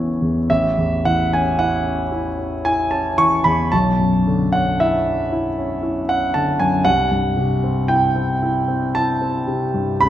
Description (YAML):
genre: classical, impressionist solo piano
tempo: 57 BPM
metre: 3/4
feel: rubato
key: unclear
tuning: A4 = 438 Hz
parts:
  - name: warm concert grand piano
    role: solo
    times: 0.0-10.1 s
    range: A1 to G#6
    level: -16 LUFS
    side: equal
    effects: none
room: wet recital hall reverb, RT60 1.8 s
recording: none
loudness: -16 LUFS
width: side -12 dB against mid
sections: 0.5-10.1 A section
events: none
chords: 0.5 A6; 3.7 Bmadd9; 6.9 C